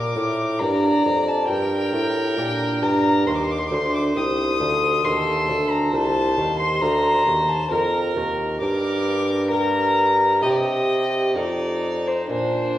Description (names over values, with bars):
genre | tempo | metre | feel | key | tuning
classical, baroque-style sonata movement with continuo | 67 BPM | 4/4 | rubato | unclear | A4 = 440 Hz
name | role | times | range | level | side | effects
dark violin | melody | 0.0-12.8 s | C5 to Eb6 | -23 LUFS | left 2 dB | none
rich violin | second line | 0.0-12.8 s | D4 to D5 | -27 LUFS | right 2 dB | none
lute | accompaniment | 0.0-12.8 s | D2 to C5 | -27 LUFS | right 2 dB | none
warm bassoon | bass | 0.0-12.8 s | C2 to C3 | -23 LUFS | right 1 dB | none
room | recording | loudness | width
wet recital hall reverb, RT60 1.7 s | heard from further back in the room, vinyl crackle | -18 LUFS | side -13 dB against mid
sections
0.0-12.8 A section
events
none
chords
0.0 Gm; 3.3 Cm; 5.0 F7; 6.8 Bb/D; 8.6 Gm; 10.4 Cm; 11.4 F7